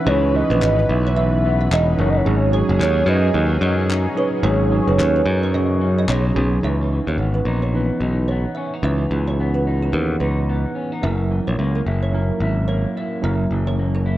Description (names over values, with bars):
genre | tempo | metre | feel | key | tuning
indie pop, bedroom pop | 109 BPM | 4/4 | swing 60% on 16ths | C# dorian | A4 = 440 Hz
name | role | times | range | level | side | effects
warm velvety synth lead | melody | 0.0-6.3 s | C#5 to E5 | -23 LUFS | right 1 dB | wide subtle chorus
electric guitar through a small old amp | accompaniment | 0.0-14.2 s | F#2 to E4 | -27 LUFS | left 2 dB | lush chorus, warbly pitch drift
tine electric piano | accompaniment | 0.0-14.2 s | E3 to B4 | -24 LUFS | right 2 dB | overdrive, fast stereo tremolo, cassette tape
lush unison pad | sustained chords | 0.0-6.6 s | E3 to B4 | -29 LUFS | equal | chorus
kalimba | second line | 0.1-14.1 s | G#4 to E5 | -29 LUFS | right 4 dB | ensemble chorus, analog delay
modern bright picked electric bass | bass | 0.1-14.2 s | E1 to F#2 | -19 LUFS | equal | none
group handclap | percussion | 0.6-6.2 s | none | -29 LUFS | left 3 dB | none
room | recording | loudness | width
light reverb, digital ambience | worn, warbling old tape, cassette tape, warbly pitch drift | -17 LUFS | side -14 dB against mid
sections
0.0-6.6 A section; 6.6-14.2 B section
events
none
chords
0.0 C#m9; 2.3 G#7sus4; 6.6 C#m9; 11.0 F#7